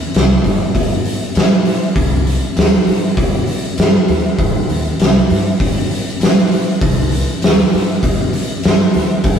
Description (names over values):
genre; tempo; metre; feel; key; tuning
stoner and doom metal; 99 BPM; 4/4; straight; C minor; A4 = 440 Hz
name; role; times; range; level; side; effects
upright bass; bass; 0.0-9.4 s; C2 to Bb2; -21 LUFS; left 1 dB; overdrive
oversized low-tuned drum kit; drums; 0.1-9.4 s; hi-hat, kick drum, snare drum; -13 LUFS; equal; none
room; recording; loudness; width
little or no reverb; rough rehearsal-room recording; -12 LUFS; side -8 dB against mid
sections
0.0-9.4 A section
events
none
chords
none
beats
0.14 0.74 1.35 | 1.96 2.56 3.17 3.78 | 4.38 4.99 5.60 6.21 | 6.81 7.42 8.03 8.64 | 9.24